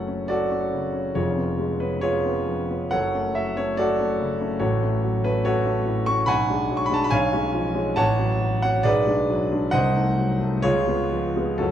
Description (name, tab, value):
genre	classical, romantic character piece for solo piano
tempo	60-72 BPM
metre	2/4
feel	rubato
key	F# minor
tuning	A4 = 440 Hz
part	warm concert grand piano	solo	0.0-11.7 s	E#1 to C#6	-20 LUFS	equal	none
room	wet recital hall reverb, RT60 1.6 s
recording	dark, warm production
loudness	-20 LUFS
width	side -10 dB against mid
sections	0.0-11.7 A section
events	none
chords	0.0 F#m; 1.2 C#7/E#; 2.9 F#m; 4.6 F#m/A; 6.3 G#m7b5/B; 7.1 C#7/B; 8.0 F#m/A; 8.9 G#m7b5/B; 9.7 Cdim7; 10.6 C#7